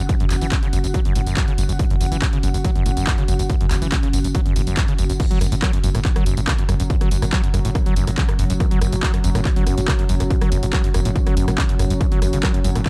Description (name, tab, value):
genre	driving peak-time techno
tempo	141 BPM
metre	4/4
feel	straight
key	unclear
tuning	A4 = 441 Hz
part	overdriven acid bass	riff	0.0-12.9 s	E2 to F#3	-27 LUFS	equal	vintage 12-bit sampler grit, sidechain pumping
part	growling 808-style bass	bass	0.0-12.9 s	F#1	-25 LUFS	equal	tube saturation, sidechain pumping, low-pass filter
part	deep dark ambient pad	texture	0.0-12.9 s	C#4 to F#5	-32 LUFS	equal	chorus, built-in reverb, sidechain pumping
part	electronic kick drum	drums	0.1-12.9 s	none	-22 LUFS	equal	overdrive
part	techno drum kit	drums	0.1-12.9 s	crash cymbal, handclaps, hi-hat, rim click, tambourine	-30 LUFS	equal	overdrive
part	analog drone	drone	6.4-12.9 s	F#3	-32 LUFS	equal	chorus, sidechain pumping
room	digital ambience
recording	dark, warm production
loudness	-19 LUFS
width	mono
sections	0.0-5.2 A section; 5.2-12.9 B section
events	drop 5.2-12.9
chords	0.0 F#5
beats	| 0.09 0.52 0.94 1.37 | 1.79 2.22 2.65 3.07 | 3.50 3.92 4.35 4.77 | 5.20 5.62 6.05 6.47 | 6.90 7.33 7.75 8.18 | 8.60 9.03 9.45 9.88 | 10.30 10.73 11.15 11.58 | 12.01 12.43 12.86